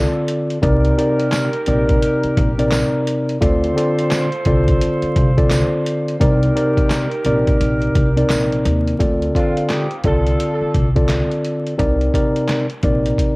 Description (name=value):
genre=hip hop, boom-bap hip-hop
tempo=86 BPM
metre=4/4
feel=swing 61% on 16ths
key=unclear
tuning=A4 = 440 Hz
part: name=mellow tine electric piano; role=accompaniment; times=0.0-13.4 s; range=C3 to D5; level=-18 LUFS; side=equal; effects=cassette tape, high-pass filter, low-pass filter
part: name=mellow horn section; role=stabs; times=0.0-10.7 s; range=C4 to C5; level=-25 LUFS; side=right 1 dB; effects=high-pass filter, low-pass filter, cassette tape, analog delay
part: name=upright bass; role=bass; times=0.0-13.1 s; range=Bb1 to Eb2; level=-19 LUFS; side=equal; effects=transformer saturation
part: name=trip hop sampler-style drum kit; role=drums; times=0.3-13.4 s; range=handclaps, hi-hat, kick drum, snare drum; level=-20 LUFS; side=equal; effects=cassette tape
part: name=tambourine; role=percussion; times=1.3-8.5 s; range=none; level=-33 LUFS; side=right 3 dB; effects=none
room=light reverb, small room ambience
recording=home recording on cassette, vinyl crackle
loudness=-15 LUFS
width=side -26 dB against mid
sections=0.0-9.0 A section; 9.0-13.4 B section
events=none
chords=0.0 Dm7; 0.6 Cm7; 3.4 Dm7; 6.2 Cm7; 9.0 Dm7; 11.8 Cm7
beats=| 0.63 1.32 2.02 2.72 | 3.42 4.12 4.81 5.51 | 6.21 6.91 7.60 8.30 | 9.00 9.70 10.39 11.09 | 11.79 12.49 13.19